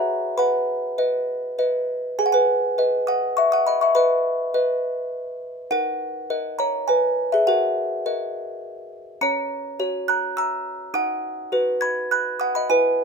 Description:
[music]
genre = classical, lullaby for music box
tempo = 103 BPM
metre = 3/4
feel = straight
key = G# minor, B major from 9.2 s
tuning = A4 = 441 Hz
[part]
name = music box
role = solo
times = 0.0-13.0 s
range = C#4 to G#6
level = -20 LUFS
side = equal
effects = none
[sound]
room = moderate studio reverb, RT60 0.6 s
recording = minimal, uncompressed stereo recording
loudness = -20 LUFS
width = side -5 dB against mid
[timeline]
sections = 0.0-2.2 A section; 2.2-13.0 B section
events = none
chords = 0.4 B; 2.2 G#m; 4.0 B; 5.7 D#m; 7.5 D#m/F#; 9.2 F#7/C#; 10.9 B/D#

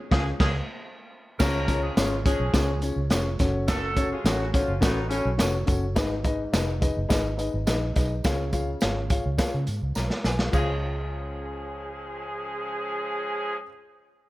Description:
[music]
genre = uptempo 1960s-style soul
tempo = 105 BPM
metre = 4/4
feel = straight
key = Db mixolydian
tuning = A4 = 440 Hz
[part]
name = warm horn section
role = second line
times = 0.1-5.3, 10.5-13.6 s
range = A2 to Bb4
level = -31 LUFS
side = equal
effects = none
[part]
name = dark upright piano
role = accompaniment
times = 0.1-13.7 s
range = Db2 to Bb5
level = -30 LUFS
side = left 2 dB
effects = none
[part]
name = vintage muted fingered electric bass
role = bass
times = 0.1-13.7 s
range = F1 to Db3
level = -28 LUFS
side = equal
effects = none
[part]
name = crunchy breakbeat drum kit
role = drums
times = 0.1-10.7 s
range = crash cymbal, hi-hat, kick drum, snare drum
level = -26 LUFS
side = equal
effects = none
[part]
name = tambourine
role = percussion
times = 1.4-10.8 s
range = none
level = -42 LUFS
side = right 4 dB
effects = none
[sound]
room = light reverb, small room ambience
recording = none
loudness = -23 LUFS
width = side -17 dB against mid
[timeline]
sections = 0.0-1.4 A section; 1.4-10.5 B section; 10.5-12.8 C section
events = upright piano fill 0.0-1.4; band accent 0.0-1.4; drum fill 10.0-10.5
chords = 0.0 Db; 3.4 Gbm; 6.0 Abm; 8.2 Db

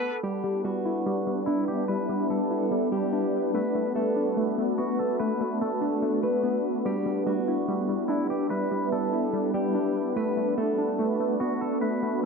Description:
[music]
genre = hip hop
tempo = 145 BPM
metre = 4/4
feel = half-time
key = E minor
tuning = A4 = 440 Hz
[part]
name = electric guitar at the edge of break-up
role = melody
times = 0.0-12.2 s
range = E4 to B4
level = -32 LUFS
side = left 1 dB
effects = phaser, tape echo
[part]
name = shimmering ambient pad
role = sustained chords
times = 0.0-12.3 s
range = G3 to D6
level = -27 LUFS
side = equal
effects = chorus, built-in reverb
[part]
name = hollow square pluck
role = arpeggios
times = 0.0-12.3 s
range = G3 to E4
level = -30 LUFS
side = equal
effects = chorus, tape echo
[sound]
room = light reverb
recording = dry, gritty hardware recording, low-pass filter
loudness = -24 LUFS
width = side -4 dB against mid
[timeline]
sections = 0.2-12.3 A section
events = filter sweep 0.2-12.3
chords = 0.2 Em7; 3.5 Bm7; 6.9 Em7; 10.2 Bm7

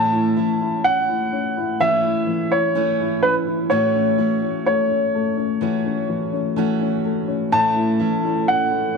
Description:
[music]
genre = pop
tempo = 63 BPM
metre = 4/4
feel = straight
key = A major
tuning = A4 = 445 Hz
[part]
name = clear baby grand piano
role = melody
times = 0.0-9.0 s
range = B4 to A5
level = -20 LUFS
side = equal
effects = none
[part]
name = dark upright piano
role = accompaniment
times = 0.0-9.0 s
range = A2 to E4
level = -22 LUFS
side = left 7 dB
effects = none
[part]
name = picked steel-string acoustic guitar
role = arpeggios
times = 0.0-9.0 s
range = A2 to F#4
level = -26 LUFS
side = right 14 dB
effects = none
[part]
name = mellow brass ensemble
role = sustained chords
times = 7.5-9.0 s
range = A2 to A4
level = -29 LUFS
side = right 10 dB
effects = none
[sound]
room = moderate plate reverb, RT60 2.4 s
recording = 1960s-style stereo with parts hard left and right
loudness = -18 LUFS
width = side -4 dB against mid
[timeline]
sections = 0.0-9.0 A section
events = none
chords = 0.0 A; 3.7 F#m7/A; 7.5 A

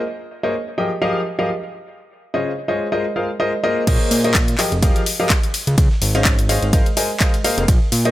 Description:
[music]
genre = piano house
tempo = 126 BPM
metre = 4/4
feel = swing 56% on 16ths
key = Bb dorian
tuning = A4 = 441 Hz
[part]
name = clear grand piano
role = riff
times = 0.4-8.1 s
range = Db3 to Ab5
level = -20 LUFS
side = left 1 dB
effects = sidechain pumping, dub echo
[part]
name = fat analog bass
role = bass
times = 3.9-8.1 s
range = F1 to Bb2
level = -19 LUFS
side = equal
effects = tube saturation, sidechain pumping
[part]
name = dusty soul sampler-style drum kit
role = drums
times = 3.9-8.0 s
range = ride cymbal, snare drum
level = -32 LUFS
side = right 4 dB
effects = none
[part]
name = electronic kick drum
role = drums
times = 3.9-7.8 s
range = none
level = -16 LUFS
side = equal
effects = overdrive
[part]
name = house drum kit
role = drums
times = 3.9-8.1 s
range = crash cymbal, handclaps, hi-hat, ride cymbal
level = -21 LUFS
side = left 1 dB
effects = overdrive
[sound]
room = light reverb, digital ambience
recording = none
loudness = -16 LUFS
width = side -15 dB against mid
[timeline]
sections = 0.0-3.9 A section; 3.9-8.1 B section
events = drop 3.9-8.1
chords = 0.1 Bbm11; 0.8 Fm11; 1.7 Dbmaj9; 2.9 Ab69; 3.9 Bbm11; 4.6 Fm11; 5.5 Dbmaj9; 6.7 Ab69

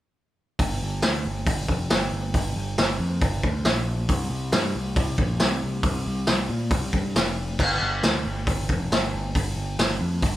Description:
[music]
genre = garage rock duo or trio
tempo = 137 BPM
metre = 4/4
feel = straight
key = unclear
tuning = A4 = 440 Hz
[part]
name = growling picked electric bass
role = bass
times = 0.6-10.4 s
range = F1 to Bb2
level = -27 LUFS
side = equal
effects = overdrive
[part]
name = crunchy breakbeat drum kit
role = drums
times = 0.6-10.3 s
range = crash cymbal, hi-hat, kick drum, snare drum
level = -23 LUFS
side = equal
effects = none
[sound]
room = little or no reverb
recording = band playing live in one room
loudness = -22 LUFS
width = side -14 dB against mid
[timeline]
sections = 0.6-10.4 A section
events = none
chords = none

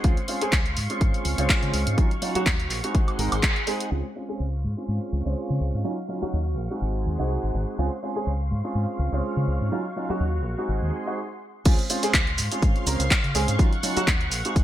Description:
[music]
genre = filtered disco house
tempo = 124 BPM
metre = 4/4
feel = swing 55% on 16ths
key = Db major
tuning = A4 = 440 Hz
[part]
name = warm baby grand piano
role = accompaniment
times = 0.0-14.6 s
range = Gb3 to Bb4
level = -29 LUFS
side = right 2 dB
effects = phaser, vintage 12-bit sampler grit, sidechain pumping, low-pass filter
[part]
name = string machine, full ensemble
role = sustained chords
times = 0.0-14.6 s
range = Gb4 to Db6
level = -34 LUFS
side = equal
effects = ensemble chorus, sidechain pumping, low-pass filter
[part]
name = deep dub fingered electric bass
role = bass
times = 0.0-14.6 s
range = Ab1 to Db3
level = -26 LUFS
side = equal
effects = sidechain pumping, low-pass filter
[part]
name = electronic kick drum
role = drums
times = 0.0-3.5, 11.7-14.6 s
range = none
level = -21 LUFS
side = equal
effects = none
[part]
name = punchy analog drum machine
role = drums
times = 0.0-3.9, 11.7-14.6 s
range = crash cymbal, handclaps, hi-hat, shaker, woodblock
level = -26 LUFS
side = equal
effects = sidechain pumping on hats, low-pass filter on hats, low-pass filter on snare, sidechain pumping on perc, low-pass filter on perc, sidechain pumping on cymbals, low-pass filter on cymbals, low-pass filter on room, gated reverb
[sound]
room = little or no reverb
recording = bright 1980s-style digital production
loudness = -22 LUFS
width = side -12 dB against mid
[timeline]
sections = 0.0-3.9 A section; 3.9-11.7 B section; 11.7-14.6 C section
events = filter sweep 0.0-3.9, 3.9-11.7; band accent 3.4; stop 11.2-11.7; drop 11.7-14.6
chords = 0.0 Dbmaj7; 2.0 Ebm9; 2.9 Ab7; 3.9 Dbmaj7; 5.8 Ebm9; 6.8 Ab7; 7.8 Dbmaj7; 9.7 Ebm9; 10.7 Ab7; 11.7 Dbmaj7; 13.6 Ebm9

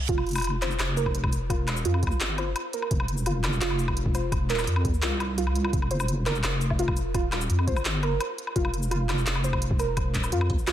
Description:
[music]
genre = half-time drum and bass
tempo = 170 BPM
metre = 4/4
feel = half-time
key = unclear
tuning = A4 = 440 Hz
[part]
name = deep soft wobble bass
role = bass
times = 0.0-10.7 s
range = F1 to F2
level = -27 LUFS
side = equal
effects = chorus
[part]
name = warbly dusty pluck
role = arpeggios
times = 0.1-10.7 s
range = F4 to C5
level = -31 LUFS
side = right 2 dB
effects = chorus, ping-pong delay
[part]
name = electronic kick drum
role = drums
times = 0.1-10.6 s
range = none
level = -27 LUFS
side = equal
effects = overdrive
[part]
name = organic electronic drum kit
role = drums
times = 0.1-10.7 s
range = handclaps, hi-hat, shaker, woodblock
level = -30 LUFS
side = left 1 dB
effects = overdrive
[sound]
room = light reverb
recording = none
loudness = -24 LUFS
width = side -11 dB against mid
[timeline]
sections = 0.0-10.7 A section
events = none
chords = 0.0 F5

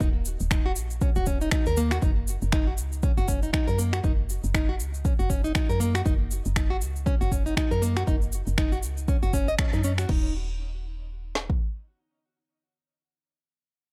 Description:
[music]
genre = afro house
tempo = 119 BPM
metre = 4/4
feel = swing 57% on 16ths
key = unclear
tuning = A4 = 440 Hz
[part]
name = nylon-string guitar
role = arpeggios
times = 0.0-10.3 s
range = Bb3 to Eb5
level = -33 LUFS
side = equal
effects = sidechain pumping, tape echo
[part]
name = woody FM bass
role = bass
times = 0.0-11.6 s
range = Eb1 to Gb2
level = -31 LUFS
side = equal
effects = sidechain pumping
[part]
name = afro-pop drum kit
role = drums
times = 0.0-11.6 s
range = kick drum, snare drum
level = -27 LUFS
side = equal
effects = none
[part]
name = afro-pop drum kit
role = drums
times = 0.0-10.2 s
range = crash cymbal, finger snaps, shaker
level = -35 LUFS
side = equal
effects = none
[sound]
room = digital ambience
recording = none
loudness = -26 LUFS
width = mono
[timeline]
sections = 0.0-10.1 A section; 10.1-13.9 B section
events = drop 0.0-10.1; band accent 9.6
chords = 0.0 Eb5; 2.0 Gb5; 10.1 N.C.

